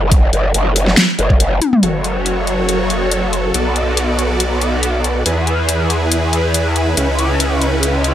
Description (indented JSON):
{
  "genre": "heavy wobble dubstep",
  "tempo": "140 BPM",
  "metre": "4/4",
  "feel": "swing 53% on 16ths, half-time",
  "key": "F# minor",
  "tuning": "A4 = 438 Hz",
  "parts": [
    { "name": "growl bass", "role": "bass", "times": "0.0-8.1 s", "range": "F#1 to E2", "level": "-16 LUFS", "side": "equal", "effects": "chorus, overdrive" },
    { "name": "dubstep drum kit", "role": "drums", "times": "0.1-8.1 s", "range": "hi-hat, snare drum, toms", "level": "-16 LUFS", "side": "left 1 dB", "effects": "overdrive, small room ambience" },
    { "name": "electronic kick drum", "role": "drums", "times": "0.1-1.4 s", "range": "none", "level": "-12 LUFS", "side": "equal", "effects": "overdrive, small room ambience" },
    { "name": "supersaw chords", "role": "sustained chords", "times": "1.8-8.1 s", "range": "C#3 to D5", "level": "-18 LUFS", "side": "equal", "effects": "sidechain pumping" }
  ],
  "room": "light reverb",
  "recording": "none",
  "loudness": "-13 LUFS",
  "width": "side -11 dB against mid",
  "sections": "0.0-1.8 A section; 1.8-8.1 B section",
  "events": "drop 0.0-1.8; drum fill 1.6",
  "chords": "0.0 N.C.; 1.8 F#m; 3.5 Bm7; 5.3 E; 7.0 C#m7"
}